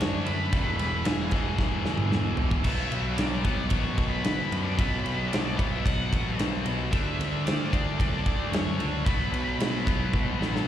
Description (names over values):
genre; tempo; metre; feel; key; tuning
quiet-loud alternative rock; 112 BPM; 4/4; straight; B minor; A4 = 441 Hz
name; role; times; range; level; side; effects
octave-fuzz lead guitar; melody; 0.0-10.6 s; G#4 to F#5; -35 LUFS; equal; distortion, slapback echo, analog delay
distorted electric guitar; riff; 0.0-10.7 s; E2 to D4; -35 LUFS; right 13 dB; overdrive, slapback echo
high-gain distorted guitar; riff; 0.0-10.7 s; E2 to D4; -31 LUFS; left 10 dB; distortion, slapback echo
fuzz picked electric bass; bass; 0.0-10.7 s; E1 to F#2; -30 LUFS; equal; overdrive
big rock drum kit; drums; 0.0-10.7 s; crash cymbal, kick drum, ride cymbal, snare drum, toms; -28 LUFS; equal; none
room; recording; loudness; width
little or no reverb; live gig heard through the venue's PA, recital hall reverb; -24 LUFS; side -11 dB against mid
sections
0.0-10.7 A section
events
drum fill 1.6-2.6, 10.1-10.7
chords
0.0 D; 0.5 E; 2.6 Bm; 6.9 D5; 9.1 B5